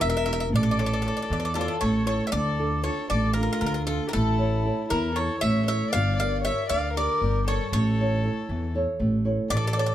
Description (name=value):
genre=greek folk, Greek bouzouki band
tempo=234 BPM (eighths)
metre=7/8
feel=straight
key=D harmonic minor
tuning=A4 = 440 Hz
part: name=Greek bouzouki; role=melody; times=0.0-9.9 s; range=A4 to F5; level=-28 LUFS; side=equal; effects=none
part: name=dark violin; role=second line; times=0.0-9.9 s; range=E4 to D5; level=-32 LUFS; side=left 4 dB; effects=none
part: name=nylon-string guitar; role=accompaniment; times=0.0-9.9 s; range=D3 to D5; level=-28 LUFS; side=right 1 dB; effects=none
part: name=upright bass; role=bass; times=0.0-9.9 s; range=E1 to E2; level=-27 LUFS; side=equal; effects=none
part: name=darbuka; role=percussion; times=0.0-2.2 s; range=none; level=-31 LUFS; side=right 3 dB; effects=none
room=moderate small room ambience, RT60 0.5 s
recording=dark, warm production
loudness=-22 LUFS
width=side -12 dB against mid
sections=0.0-2.3 A section; 2.3-9.9 B section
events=none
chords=0.0 Edim; 0.5 A; 2.3 Dm; 4.1 A; 5.9 Gm; 7.7 A